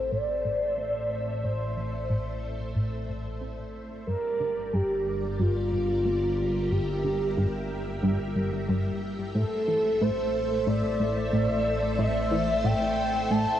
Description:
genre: ambient, sequencer-driven space music.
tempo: 91 BPM.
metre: 4/4.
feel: straight.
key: A phrygian.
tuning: A4 = 440 Hz.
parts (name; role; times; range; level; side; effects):
expressive portamento lead; melody; 0.0-13.6 s; F4 to A5; -28 LUFS; equal; lush chorus, ping-pong delay.
string machine, full ensemble; sustained chords; 0.0-13.6 s; G3 to E5; -33 LUFS; equal; ensemble chorus.
analog drone; bass; 0.0-13.6 s; G1 to A1; -34 LUFS; equal; chorus.
plucky analog bass; riff; 0.1-13.5 s; G2 to C4; -29 LUFS; equal; ensemble chorus, ping-pong delay.
room: wet huge ambient reverb, RT60 7.8 s.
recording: worn, warbling old tape, cassette tape, warbly pitch drift.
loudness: -25 LUFS.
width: side -11 dB against mid.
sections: 0.0-13.6 A section.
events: fade-in on string machine 0.0-13.6; filter sweep on analog synth bass 0.0-13.6.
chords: 0.0 Am; 4.1 Gm; 9.3 Am.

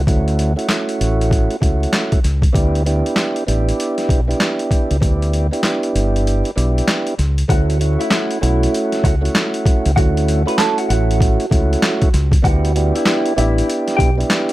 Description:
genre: hip hop, boom-bap hip-hop.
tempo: 97 BPM.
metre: 4/4.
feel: swing 63% on 16ths.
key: D major.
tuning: A4 = 440 Hz.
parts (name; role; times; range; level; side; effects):
mellow tonewheel organ; accompaniment; 0.0-14.5 s; A3 to G4; -20 LUFS; right 1 dB; slow rotary speaker, high-pass filter, low-pass filter.
deep dub fingered electric bass; bass; 0.0-14.2 s; G1 to D2; -17 LUFS; equal; none.
boom bap sampler-style drum kit; drums; 0.1-14.5 s; handclaps, hi-hat, kick drum, snare drum; -18 LUFS; equal; overdrive.
mellow electric guitar; melody; 7.5-14.2 s; E4 to B5; -23 LUFS; right 2 dB; phaser, high-pass filter, low-pass filter.
room: little or no reverb.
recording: vinyl crackle.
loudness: -14 LUFS.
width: side -16 dB against mid.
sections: 0.0-7.5 A section; 7.5-14.5 B section.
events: kick muted 6.3-7.5.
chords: 0.0 Dmaj9; 2.5 A9sus4 (rootless); 7.5 Dmaj9; 12.4 A9sus4 (rootless).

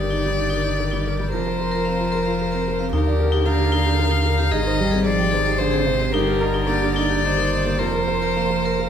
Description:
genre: neoclassical piano and strings.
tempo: 112 BPM.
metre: 3/4.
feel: rubato.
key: Eb major.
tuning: A4 = 438 Hz.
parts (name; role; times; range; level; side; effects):
warm violin; melody; 0.0-8.9 s; Bb4 to F5; -24 LUFS; left 5 dB; none.
warm cello; second line; 0.0-8.9 s; C3 to G3; -26 LUFS; right 3 dB; none.
dark viola; accompaniment; 0.0-8.9 s; G4 to C5; -28 LUFS; right 3 dB; none.
felt-muted upright piano; accompaniment; 0.0-8.9 s; Eb2 to Eb5; -27 LUFS; right 2 dB; none.
vibraphone with hard mallets; arpeggios; 0.0-8.9 s; Eb4 to C6; -28 LUFS; left 1 dB; none.
warm sub bass; bass; 0.0-8.9 s; F1 to Eb2; -24 LUFS; equal; none.
room: moderate scoring stage reverb, RT60 1.7 s.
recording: recorded in a church or concert hall.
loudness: -18 LUFS.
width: side -8 dB against mid.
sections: 0.0-8.9 A section.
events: none.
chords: 0.0 Ebmaj7/G; 1.3 Bbsus2/F; 2.9 Ebmaj7; 4.5 Abmaj7; 6.1 Ebmaj7/G; 7.8 Bbsus2/F.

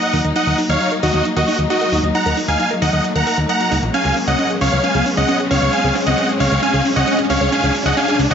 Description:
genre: uplifting trance.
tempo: 134 BPM.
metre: 4/4.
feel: straight.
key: Eb minor.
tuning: A4 = 440 Hz.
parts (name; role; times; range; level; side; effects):
big supersaw lead; melody; 0.0-8.3 s; Gb4 to Bb5; -18 LUFS; right 1 dB; dub echo.
rich studio string section; sustained chords; 0.0-8.3 s; Gb3 to Eb4; -22 LUFS; left 2 dB; none.
wide unison pluck; arpeggios; 0.0-8.3 s; Db4 to Bb5; -25 LUFS; right 2 dB; dub echo.
electronic hi-hat; drums; 0.0-8.3 s; none; -32 LUFS; right 1 dB; high-pass filter on hats, high-pass filter on room.
riser; sound effects; 0.1-8.3 s; none; -24 LUFS; left 1 dB; none.
plucky analog bass; bass; 0.1-8.3 s; Bb1 to Eb2; -20 LUFS; equal; none.
room: moderate lush hall reverb, RT60 1.6 s.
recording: nothing above 7.6 kHz.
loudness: -14 LUFS.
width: side -7 dB against mid.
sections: 0.0-8.3 A section.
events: build-up 0.0-8.3; filter sweep on synth arpeggio sound 0.0-8.3; riser 0.1-8.3.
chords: 0.0 Ebm; 3.9 Dbsus4.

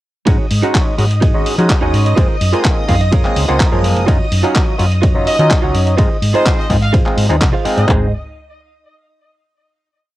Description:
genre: filtered disco house.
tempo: 126 BPM.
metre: 4/4.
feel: straight.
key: Ab mixolydian.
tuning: A4 = 440 Hz.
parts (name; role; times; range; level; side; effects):
mellow clav; accompaniment; 0.3-8.1 s; F3 to F5; -19 LUFS; equal; phaser, vintage 12-bit sampler grit, sidechain pumping.
string machine, full ensemble; sustained chords; 0.3-7.9 s; Eb5 to Eb6; -26 LUFS; equal; ensemble chorus, sidechain pumping.
direct-recorded clean electric guitar; riff; 0.3-8.1 s; Eb4 to Bb5; -22 LUFS; right 7 dB; sidechain pumping.
hollow-body short-scale fingered electric bass; bass; 0.3-8.1 s; Gb1 to F3; -16 LUFS; equal; tube saturation, sidechain pumping.
dusty soul sampler-style drum kit; drums; 0.3-7.9 s; handclaps, hi-hat, ride cymbal; -22 LUFS; equal; sidechain pumping on hats, sidechain pumping on cymbals.
punchy analog drum machine; drums; 0.3-8.0 s; handclaps, kick drum, toms; -15 LUFS; equal; none.
bright trumpet section; melody; 5.3-7.9 s; C5 to F5; -19 LUFS; equal; sidechain pumping, cassette tape.
room: light reverb.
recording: home recording on cassette.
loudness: -11 LUFS.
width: side -16 dB against mid.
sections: 0.3-7.9 drop; 7.9-9.8 final chord.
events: drop 0.3-7.9; clean electric guitar fill 2.6-4.1.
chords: 0.3 Ab7sus4; 2.2 Gbmaj9#11; 4.1 Ebm9/Gb; 6.0 Fm7/Ab; 7.9 Ab.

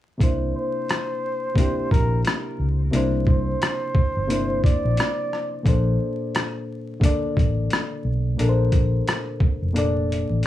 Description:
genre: lo-fi hip hop.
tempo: 88 BPM.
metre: 4/4.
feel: swing 62% on 16ths.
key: unclear.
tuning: A4 = 440 Hz.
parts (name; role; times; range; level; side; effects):
reed electric piano; accompaniment; 0.2-10.5 s; Bb2 to D5; -26 LUFS; left 2 dB; plate reverb.
vintage muted fingered electric bass; bass; 0.2-10.4 s; F1 to Db2; -22 LUFS; equal; none.
boom bap sampler-style drum kit; drums; 0.2-10.5 s; hi-hat, kick drum, rim click; -21 LUFS; equal; none.
trumpet with bucket mute; melody; 0.6-5.6 s; Bb4 to D5; -28 LUFS; right 1 dB; analog delay, plate reverb.
room: light reverb.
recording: vinyl crackle, studio ambience.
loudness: -20 LUFS.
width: side -13 dB against mid.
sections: 0.2-10.5 A section.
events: kick muted 9.7-10.5.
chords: 0.2 C9; 5.7 Bbmaj7.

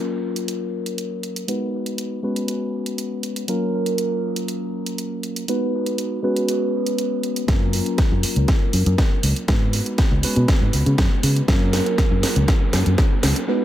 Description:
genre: filtered disco house.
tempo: 120 BPM.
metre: 4/4.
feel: straight.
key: F# major.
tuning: A4 = 440 Hz.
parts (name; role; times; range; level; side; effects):
mellow tine electric piano; accompaniment; 0.0-13.6 s; F#3 to B4; -23 LUFS; equal; phaser, vintage 12-bit sampler grit, sidechain pumping, low-pass filter, dub echo.
house drum kit; drums; 0.4-13.5 s; hi-hat, snare drum; -26 LUFS; equal; overdrive, dub echo.
fingered electric bass; bass; 7.5-13.3 s; C#2 to C#3; -19 LUFS; equal; sidechain pumping, low-pass filter.
electronic kick drum; drums; 7.5-13.1 s; none; -19 LUFS; equal; overdrive.
room: light reverb.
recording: echo-heavy mix.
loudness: -18 LUFS.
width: side -12 dB against mid.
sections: 0.0-7.5 A section; 7.5-13.6 B section.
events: filter sweep on tine electric piano 0.0-7.5; build-up 7.5-13.6; drum fill 7.5-13.5; filter sweep 7.5-13.6.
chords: 0.0 F#maj7; 1.5 G#m7; 2.2 C#7sus4; 3.5 F#maj7; 5.5 G#m7; 6.2 C#7sus4; 7.5 F#maj7; 9.5 G#m7; 10.2 C#7sus4; 11.5 F#maj7.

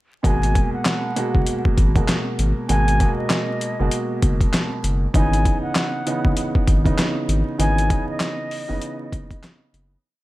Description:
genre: hip hop, boom-bap hip-hop.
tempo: 98 BPM.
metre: 4/4.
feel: swing 61% on 16ths.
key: G# minor.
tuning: A4 = 440 Hz.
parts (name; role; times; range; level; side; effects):
mellow silver concert flute; melody; 0.2-9.0 s; D#5 to G#5; -27 LUFS; left 1 dB; high-pass filter, low-pass filter, digital delay.
warm baby grand piano; accompaniment; 0.2-10.0 s; B2 to F#4; -24 LUFS; right 2 dB; cassette tape, high-pass filter, low-pass filter.
saturated sub bass; bass; 0.2-10.0 s; F#1 to G#1; -20 LUFS; equal; none.
boom bap sampler-style drum kit; drums; 0.2-9.9 s; handclaps, hi-hat, kick drum, snare drum; -21 LUFS; equal; overdrive.
room: studio reverb.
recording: vinyl crackle.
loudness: -18 LUFS.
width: side -17 dB against mid.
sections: 0.2-10.0 verse.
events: fade-out 7.6-10.0.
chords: 0.2 G#m9; 5.1 C#m9.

